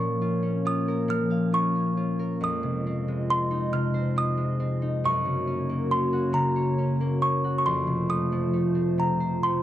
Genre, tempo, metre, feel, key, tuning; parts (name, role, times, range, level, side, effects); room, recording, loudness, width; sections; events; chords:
children's music, lullaby; 46 BPM (dotted quarters); 6/8; rubato; A4 = 438 Hz
music box; melody; 0.0-9.6 s; Bb5 to F6; -28 LUFS; right 1 dB
concert harp; accompaniment; 0.0-9.6 s; F2 to F5; -26 LUFS; left 1 dB
warbly tape-like pad; sustained chords; 0.0-9.6 s; Ab3 to Eb5; -30 LUFS; right 2 dB; chorus, built-in reverb
light reverb; dry, close 1970s-style studio recording; -23 LUFS; side -12 dB against mid
0.0-9.6 A section
0.0 Bbm; 2.4 Fm7; 5.0 Gb; 7.7 F